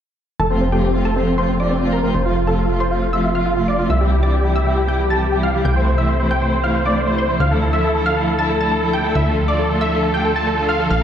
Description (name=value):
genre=trance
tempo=137 BPM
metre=4/4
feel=straight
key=F major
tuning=A4 = 440 Hz
part: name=supersaw chords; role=melody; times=0.4-11.0 s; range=C4 to A5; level=-19 LUFS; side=equal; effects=low-pass filter, tape echo
part: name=analog pluck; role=second line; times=0.4-11.0 s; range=C5 to A6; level=-27 LUFS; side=left 1 dB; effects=chorus, cassette tape, tape echo
part: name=plucky analog bass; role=bass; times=0.4-11.0 s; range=F1 to D2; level=-21 LUFS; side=equal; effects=none
part: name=dark studio string section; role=sustained chords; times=0.5-10.9 s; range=C3 to F4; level=-21 LUFS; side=equal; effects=none
room=light reverb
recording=played on a big sound system in a bare room, large studio reverb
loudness=-15 LUFS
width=side -9 dB against mid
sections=0.4-11.0 A section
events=filter sweep on supersaw synth 0.4-11.0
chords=0.4 F; 3.9 C; 7.4 Dmadd9